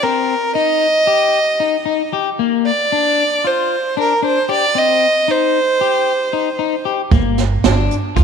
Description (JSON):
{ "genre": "progressive instrumental, band music in an uneven meter", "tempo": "229 BPM (eighths)", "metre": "9/8", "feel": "straight", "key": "unclear", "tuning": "A4 = 440 Hz", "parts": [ { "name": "clear violin", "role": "melody", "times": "0.0-6.9 s", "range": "Bb4 to Eb5", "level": "-15 LUFS", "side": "right 2 dB", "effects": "none" }, { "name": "electric guitar at the edge of break-up", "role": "arpeggios", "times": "0.0-8.2 s", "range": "Bb3 to G4", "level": "-19 LUFS", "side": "left 10 dB", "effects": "none" }, { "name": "upright bass", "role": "bass", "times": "7.1-8.2 s", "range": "G1 to D2", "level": "-15 LUFS", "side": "right 2 dB", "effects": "none" }, { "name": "jazz brush drum kit", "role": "drums", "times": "7.1-8.2 s", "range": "hi-hat, kick drum, snare drum", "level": "-16 LUFS", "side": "right 7 dB", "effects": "none" } ], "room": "moderate echo chamber reverb, RT60 2.3 s", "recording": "1960s-style stereo with parts hard left and right", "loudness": "-13 LUFS", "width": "side -6 dB against mid", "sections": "0.0-8.2 A section", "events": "none", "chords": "0.0 Cm7; 2.4 Bb; 4.8 Cm; 7.1 Gm" }